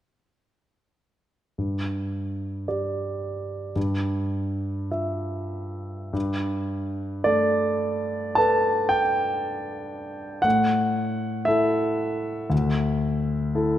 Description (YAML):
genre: classical, impressionist solo piano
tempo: 45-59 BPM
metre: 4/4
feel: rubato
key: G major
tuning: A4 = 442 Hz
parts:
  - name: clear concert grand piano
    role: solo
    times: 1.6-13.8 s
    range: D2 to A5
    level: -23 LUFS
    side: equal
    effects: none
room: moderate concert hall reverb, RT60 2.1 s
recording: none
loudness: -23 LUFS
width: side -11 dB against mid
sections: 1.6-6.2 A section; 6.2-13.8 B section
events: none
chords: 1.6 G5; 3.8 Em/G; 6.2 Gadd9; 10.4 A5; 12.5 Dsus2